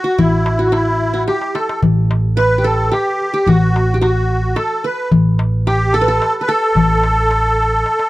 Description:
Arabic maqam ensemble; 109 BPM; 3/4; straight; A4 = 440 Hz
musette accordion; melody; 0.0-8.1 s; E4 to B4; -17 LUFS; equal
qanun; second line; 0.0-8.1 s; E4 to B4; -20 LUFS; right 1 dB
upright bass; bass; 0.2-7.8 s; A1; -17 LUFS; right 1 dB
darbuka; percussion; 0.2-8.1 s; -16 LUFS; left 3 dB
light reverb; -13 LUFS; side -18 dB against mid
0.0-8.1 A section
drum fill 1.3-1.8, 7.9

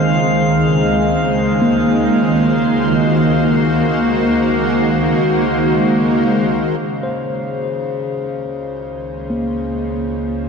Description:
ambient; free time; Db major; A4 = 441 Hz
shimmering ambient pad; sustained chords; 0.0-10.5 s; Db2 to C5; -16 LUFS; equal; chorus, built-in reverb
tine electric piano; arpeggios; 0.0-10.5 s; Bb3 to C5; -20 LUFS; equal; medium tremolo, ping-pong delay
drifting glass-harmonics texture; texture; 0.0-6.8 s; F5; -24 LUFS; right 2 dB; chorus, built-in reverb
deep rumbling drone; bass; 8.7-10.5 s; Db2; -31 LUFS; equal; built-in reverb
pedal harmonium; drone; 6.8-10.5 s; Db3; -26 LUFS; left 4 dB
wet cathedral reverb, RT60 5.2 s; dark, warm production; -14 LUFS; side -5 dB against mid
0.0-6.8 A section; 6.8-10.5 B section
filter sweep on ambient pad 0.0-6.8
0.0 Ab/Db; 6.8 Dbmaj9

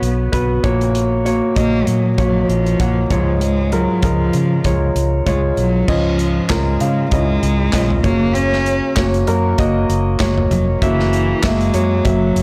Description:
piano-driven pop; 97 BPM; 4/4; swing 56% on 16ths; F# major; A4 = 436 Hz
warm grand piano; accompaniment; 0.0-12.4 s; G#2 to F#5; -21 LUFS; equal
vintage muted fingered electric bass; bass; 0.0-12.4 s; E#1 to C#3; -21 LUFS; equal
modern studio drum kit; drums; 0.0-12.4 s; crash cymbal, handclaps, hi-hat, kick drum, snare drum, toms; -24 LUFS; equal; soft clipping on kick
warm cello; melody; 1.6-12.4 s; E3 to C#4; -22 LUFS; equal
light reverb, small room ambience; blown-out, overdriven recording, overdrive; -16 LUFS; mono
0.0-5.9 A section; 5.9-12.4 B section
0.0 Bsus2; 0.6 F#/A#; 3.1 C#; 5.9 C#add9; 8.0 F#; 10.8 F#7

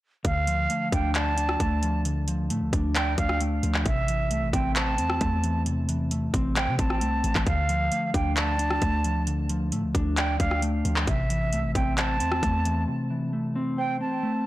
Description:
hip hop, trap; 133 BPM; 4/4; half-time; D minor; A4 = 440 Hz
silver concert flute; second line; 0.2-14.5 s; E5 to A5; -29 LUFS; right 2 dB; digital delay
mellow electric guitar; accompaniment; 0.2-14.5 s; C3 to D5; -28 LUFS; left 1 dB; spring reverb
warm 808-style bass; bass; 0.2-12.9 s; A1 to C3; -28 LUFS; equal
trap drum kit; drums; 0.2-12.8 s; handclaps, hi-hat, kick drum, rim click; -28 LUFS; equal; overdrive
light reverb; blown-out, overdriven recording, overdrive; -23 LUFS; side -16 dB against mid
0.2-14.5 A section
break 12.9-14.5
0.2 Dm; 3.9 Am; 7.5 Dm; 11.1 Am

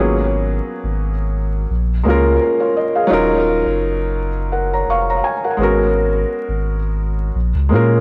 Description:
lo-fi hip hop; 85 BPM; 4/4; swing 56% on 16ths; Eb minor; A4 = 440 Hz
felt-muted upright piano; accompaniment; 0.0-8.0 s; Gb3 to Db6; -19 LUFS; equal; low-pass filter, tape echo
sub bass with octave; bass; 0.0-8.0 s; Eb1 to Bb2; -21 LUFS; equal
moderate spring reverb, RT60 1.9 s, small room reverb; echo-heavy mix, vinyl crackle; -18 LUFS; mono
0.0-8.0 A section
0.0 Abm11; 1.7 Bbm7; 3.1 Ebm9; 5.6 Abm11; 7.3 Bbm7

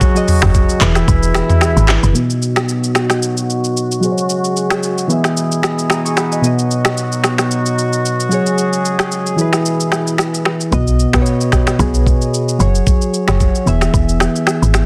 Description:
afrobeats; 112 BPM; 4/4; swing 55% on 16ths; B major; A4 = 438 Hz
soft electric-piano-like synth keys; accompaniment; 0.0-14.9 s; B2 to D#6; -19 LUFS; equal; chorus, low-pass filter
mellow brass ensemble; sustained chords; 0.0-10.7 s; B2 to G#4; -24 LUFS; equal; low-pass filter
afro-pop drum kit; drums; 0.0-14.9 s; finger snaps, handclaps, hi-hat, kick drum, rim click, shaker, toms; -18 LUFS; equal
woody log drum bass; bass; 0.4-2.1, 10.7-14.8 s; E1 to B1; -16 LUFS; equal
light reverb; dense, heavily limited modern master; -15 LUFS; mono
0.0-2.2 A section; 2.2-10.7 B section; 10.7-14.9 C section
filter sweep 2.2-10.7; kick muted 8.6-10.7
0.0 F#sus2; 0.8 E; 2.2 B; 4.0 F#sus2; 5.1 E; 6.4 B; 8.3 F#sus2; 9.4 E; 10.7 B; 12.6 F#sus2; 13.7 E

